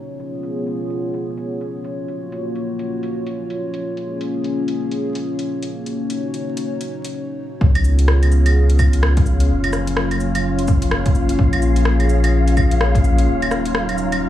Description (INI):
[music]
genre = future garage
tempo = 127 BPM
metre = 4/4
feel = swing 60% on 16ths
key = unclear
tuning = A4 = 439 Hz
[part]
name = dark analog pad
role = sustained chords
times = 0.0-14.3 s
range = Gb3 to Db5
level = -22 LUFS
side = left 1 dB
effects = chorus, vintage 12-bit sampler grit, sidechain pumping
[part]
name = deep house drum kit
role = drums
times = 0.2-14.2 s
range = cabasa, claves, hi-hat, rim click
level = -25 LUFS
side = equal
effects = overdrive, studio ambience
[part]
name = soft dub sub bass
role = bass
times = 7.6-14.3 s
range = Eb1 to Db2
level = -16 LUFS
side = equal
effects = sidechain pumping
[part]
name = electronic kick drum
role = drums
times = 7.6-13.0 s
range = none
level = -18 LUFS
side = equal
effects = overdrive, studio ambience
[part]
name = wind-like tuned noise texture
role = texture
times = 8.2-14.3 s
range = F4 to F5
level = -28 LUFS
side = left 1 dB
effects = built-in reverb
[sound]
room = light reverb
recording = vinyl crackle, low-pass filter, studio reverb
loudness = -16 LUFS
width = side -12 dB against mid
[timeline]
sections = 0.0-7.6 A section; 7.6-14.3 B section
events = filter sweep 0.0-7.6; break 7.1-7.6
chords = 0.1 Db7; 1.9 Gbmaj7; 3.8 Bbm7; 5.7 Ebm7; 7.6 Db7; 9.5 Gbmaj7; 11.4 Bbm7; 13.3 Ebm7